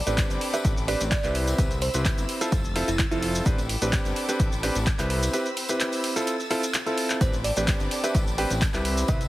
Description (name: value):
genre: piano house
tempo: 128 BPM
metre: 4/4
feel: straight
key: A minor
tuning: A4 = 440 Hz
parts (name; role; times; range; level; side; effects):
- bell-like FM electric piano; melody; 0.0-3.3, 7.2-9.3 s; E4 to G5; -32 LUFS; right 3 dB; chorus, phaser, tape echo
- rich studio violin section; sustained chords; 0.0-9.3 s; C4 to A6; -36 LUFS; left 1 dB; sidechain pumping
- clear concert grand piano; riff; 0.1-9.2 s; C4 to B4; -28 LUFS; equal; sidechain pumping, tape echo
- fat analog bass; bass; 0.1-9.3 s; F1 to C2; -28 LUFS; equal; tube saturation, sidechain pumping
- punchy analog drum machine; drums; 0.1-9.3 s; handclaps, hi-hat, shaker; -30 LUFS; equal; none
- soft brush drum kit; drums; 0.1-9.2 s; hi-hat, snare drum; -40 LUFS; right 2 dB; none
- tambourine; percussion; 0.1-9.3 s; none; -41 LUFS; left 3 dB; none
- electronic kick drum; drums; 0.2-9.2 s; none; -25 LUFS; equal; none
room: light reverb, studio reverb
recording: heavily compressed radio sound, multiband compression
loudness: -22 LUFS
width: side -16 dB against mid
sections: 0.0-9.3 A section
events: drum fill 6.7-7.2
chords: 0.0 Am11; 1.4 Cmaj7; 2.5 Fmaj7; 3.5 Am11; 5.1 Cmaj7; 6.3 Fmaj7; 7.2 Am11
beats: 0.18 0.65 1.12 | 1.58 2.05 2.52 2.99 | 3.46 3.93 4.40 4.87 | 5.33 5.80 6.27 6.74 | 7.21 7.68 8.15 8.62 | 9.08